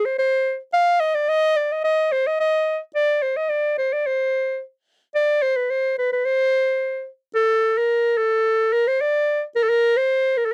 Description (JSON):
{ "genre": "balkan folk", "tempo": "109 BPM", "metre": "2/4", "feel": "straight", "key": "C harmonic minor", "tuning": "A4 = 445 Hz", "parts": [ { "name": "clear clarinet", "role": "solo", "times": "0.0-10.5 s", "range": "A4 to F5", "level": "-20 LUFS", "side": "equal", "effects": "none" } ], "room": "light reverb", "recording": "dry, close 1970s-style studio recording", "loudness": "-21 LUFS", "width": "mono", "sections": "0.0-7.4 A section; 7.4-10.5 B section", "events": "none", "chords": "none" }